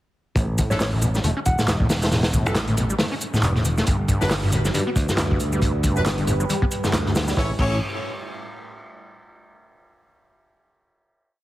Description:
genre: breakbeat, breaks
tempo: 137 BPM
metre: 4/4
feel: swing 57% on 16ths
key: A mixolydian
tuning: A4 = 440 Hz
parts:
  - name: overdriven acid bass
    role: riff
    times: 0.4-7.8 s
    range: F#2 to C#4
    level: -26 LUFS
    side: equal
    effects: distortion, wide subtle chorus, digital delay
  - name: modern bright picked electric bass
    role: bass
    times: 0.4-7.8 s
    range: E1 to G2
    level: -24 LUFS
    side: equal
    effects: none
  - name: crunchy breakbeat drum kit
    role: drums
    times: 0.4-7.7 s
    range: crash cymbal, hi-hat, kick drum, snare drum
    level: -24 LUFS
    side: equal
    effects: none
  - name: electronic shaker and handclaps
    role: drums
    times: 0.4-7.4 s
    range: none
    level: -31 LUFS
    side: right 1 dB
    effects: none
  - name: congas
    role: percussion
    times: 0.6-7.3 s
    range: none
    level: -31 LUFS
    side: left 2 dB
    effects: none
  - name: soft struck synth lead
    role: melody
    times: 0.7-1.8 s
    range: C#5 to F#5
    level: -30 LUFS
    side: equal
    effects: chorus, old record sound, digital delay
  - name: brilliant horn section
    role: stabs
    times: 0.7-7.8 s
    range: C#4 to C#5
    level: -31 LUFS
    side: equal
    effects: digital delay
  - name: warbly tape-like pad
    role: sustained chords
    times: 4.4-7.6 s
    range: G3 to B4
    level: -31 LUFS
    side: right 2 dB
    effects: chorus, built-in reverb, phaser, sidechain pumping
room: light reverb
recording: heavily compressed radio sound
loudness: -19 LUFS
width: side -15 dB against mid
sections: 0.4-7.4 drop; 7.4-9.1 final chord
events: drop 0.4-7.4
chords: 0.4 A7(no3); 3.9 Gmaj7; 7.4 A

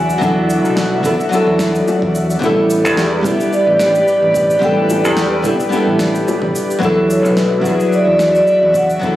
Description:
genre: sunset chillout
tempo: 109 BPM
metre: 4/4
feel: swing 55% on 16ths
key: unclear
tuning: A4 = 441 Hz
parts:
  - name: vibraphone with soft mallets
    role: melody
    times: 0.0-9.2 s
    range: B4 to G#5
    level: -16 LUFS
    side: equal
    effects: tape echo
  - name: nylon-string guitar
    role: accompaniment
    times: 0.0-9.2 s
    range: F#3 to A4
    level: -16 LUFS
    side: equal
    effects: auto-pan, vintage 12-bit sampler grit, tape echo
  - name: airy breathy pad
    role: sustained chords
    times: 0.0-9.2 s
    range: F#4 to F#5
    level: -21 LUFS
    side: equal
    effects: chorus
  - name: modern bright fingered electric bass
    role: bass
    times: 0.0-9.2 s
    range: A1 to E2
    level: -20 LUFS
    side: equal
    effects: tube saturation
  - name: electronic cabasa and snare drum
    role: drums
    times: 0.1-9.1 s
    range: none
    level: -24 LUFS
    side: equal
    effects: none
  - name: electronic kick drum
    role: drums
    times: 0.2-9.1 s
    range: none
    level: -27 LUFS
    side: equal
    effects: none
  - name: bongos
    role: percussion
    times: 1.9-6.4 s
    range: none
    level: -22 LUFS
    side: left 3 dB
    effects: none
room: light reverb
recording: recorded on a phone in the room, studio reverb, compression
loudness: -12 LUFS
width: side -14 dB against mid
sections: 0.0-9.2 A section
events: none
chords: 0.0 E9sus4; 2.4 A9sus4; 6.8 E9sus4

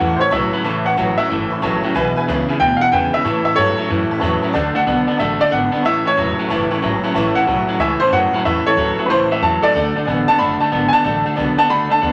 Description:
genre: rockabilly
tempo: 185 BPM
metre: 4/4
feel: swing 65% on 8ths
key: A mixolydian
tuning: A4 = 443 Hz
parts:
  - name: bright upright piano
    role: melody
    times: 0.0-12.1 s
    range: A4 to B5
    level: -19 LUFS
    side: equal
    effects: none
  - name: honky-tonk upright piano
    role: accompaniment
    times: 0.0-12.1 s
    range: B4 to B5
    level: -27 LUFS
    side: equal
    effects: none
  - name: picked steel-string acoustic guitar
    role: accompaniment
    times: 0.0-12.1 s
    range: E2 to F#4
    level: -29 LUFS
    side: equal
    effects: none
  - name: electric guitar at the edge of break-up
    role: riff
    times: 0.0-12.1 s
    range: E2 to B3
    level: -22 LUFS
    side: equal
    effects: none
  - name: upright bass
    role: bass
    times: 0.0-12.1 s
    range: E1 to A2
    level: -28 LUFS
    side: equal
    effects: none
room: moderate large studio reverb, RT60 0.8 s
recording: none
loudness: -17 LUFS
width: mono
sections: 0.0-4.5 A section; 4.5-12.1 B section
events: none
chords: 0.0 A; 1.9 E7; 3.2 A; 4.5 D; 5.8 A; 9.7 D

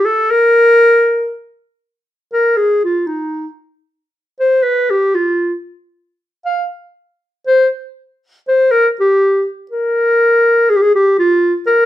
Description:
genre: mexican folk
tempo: 118 BPM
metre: 2/4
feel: swing 54% on 8ths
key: unclear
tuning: A4 = 440 Hz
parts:
  - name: mellow clarinet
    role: solo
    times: 0.0-11.9 s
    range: Eb4 to F5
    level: -11 LUFS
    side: equal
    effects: none
room: wet studio reverb, RT60 0.7 s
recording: band playing live in one room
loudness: -11 LUFS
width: side -13 dB against mid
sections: 0.0-1.6 A section; 1.6-9.7 B section; 9.7-11.9 C section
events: none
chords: none

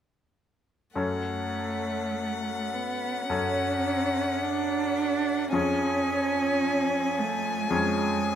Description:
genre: classical, slow romantic movement for piano trio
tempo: 49-57 BPM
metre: 4/4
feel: rubato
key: F# minor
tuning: A4 = 442 Hz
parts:
  - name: clear violin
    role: melody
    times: 1.0-8.4 s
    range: F#5 to G#5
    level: -32 LUFS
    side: left 4 dB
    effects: none
  - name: rich cello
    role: second line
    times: 1.0-8.4 s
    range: G#3 to D4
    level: -28 LUFS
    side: right 4 dB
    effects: none
  - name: bright grand piano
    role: accompaniment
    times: 1.0-8.4 s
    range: E#2 to C#5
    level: -30 LUFS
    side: left 3 dB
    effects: none
room: moderate recital hall reverb, RT60 1.4 s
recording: none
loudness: -25 LUFS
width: side -9 dB against mid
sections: 1.0-8.4 A section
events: none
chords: 1.0 F#m; 5.5 C#/E#

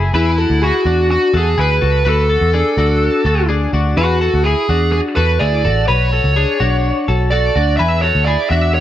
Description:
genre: jangly indie pop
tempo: 126 BPM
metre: 4/4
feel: straight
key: unclear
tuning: A4 = 440 Hz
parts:
  - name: twelve-string electric guitar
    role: arpeggios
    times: 0.0-8.8 s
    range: D4 to B4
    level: -19 LUFS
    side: left 4 dB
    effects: lush chorus, plate reverb
  - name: vintage muted picked electric bass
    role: bass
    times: 0.0-8.8 s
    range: A1 to E2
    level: -16 LUFS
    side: equal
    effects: none
  - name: dark smooth lead guitar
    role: melody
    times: 0.2-8.8 s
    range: E4 to E5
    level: -16 LUFS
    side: right 1 dB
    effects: overdrive, plate reverb
room: light reverb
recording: none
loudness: -12 LUFS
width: side -12 dB against mid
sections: 0.1-8.8 A section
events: none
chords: 0.1 E7; 2.1 D; 4.0 E7; 5.9 Bm7; 7.8 E7

